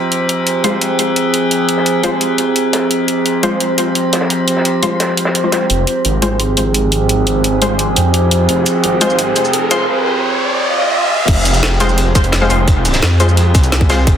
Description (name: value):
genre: dark technical drum and bass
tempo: 172 BPM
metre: 4/4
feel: straight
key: F minor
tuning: A4 = 439 Hz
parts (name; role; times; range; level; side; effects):
- metallic inharmonic drone; sustained chords; 0.0-14.2 s; F3 to C5; -16 LUFS; right 1 dB; chorus, built-in reverb, sidechain pumping
- crunchy breakbeat drum kit; drums; 0.1-5.6, 11.3-14.2 s; hi-hat, snare drum; -24 LUFS; equal; high-pass filter on hats, low-pass filter on hats, small room ambience, high-pass filter on snare, low-pass filter on snare, high-pass filter on room, low-pass filter on room
- drum and bass drum kit; drums; 0.1-14.1 s; crash cymbal, hi-hat, shaker, snare drum; -18 LUFS; equal; overdrive, small room ambience
- orchestra-hit-like synth stab; stabs; 0.6-14.0 s; Ab3 to C5; -18 LUFS; left 2 dB; built-in reverb, digital delay
- wide detuned saw bass; bass; 5.7-14.2 s; F1 to F2; -15 LUFS; equal; chorus, overdrive, sidechain pumping
- riser and swell; sound effects; 7.4-11.3 s; none; -18 LUFS; equal; none
- electronic kick drum; drums; 11.3-14.1 s; none; -12 LUFS; equal; small room ambience
room: moderate digital room reverb, RT60 1.1 s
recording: dense, heavily limited modern master, high-pass filter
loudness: -11 LUFS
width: side -9 dB against mid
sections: 0.0-5.7 A section; 5.7-11.3 B section; 11.3-14.2 C section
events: build-up 5.7-11.3; filter sweep on synth drone 5.7-11.3; filter sweep on synth stab 5.7-11.3; riser 7.4-11.3; swell 10.6-11.3; drop 11.3-14.2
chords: 0.0 Fm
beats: | 0.12 0.47 0.81 1.16 | 1.51 1.86 2.21 2.56 | 2.91 3.26 3.60 3.95 | 4.30 4.65 5.00 5.35 | 5.70 6.05 6.40 6.75 | 7.09 7.44 7.79 8.14 | 8.49 8.84 9.19 9.54 | 9.88 10.23 10.58 10.93 | 11.28 11.63 11.98 12.33 | 12.68 13.02 13.37 13.72 | 14.07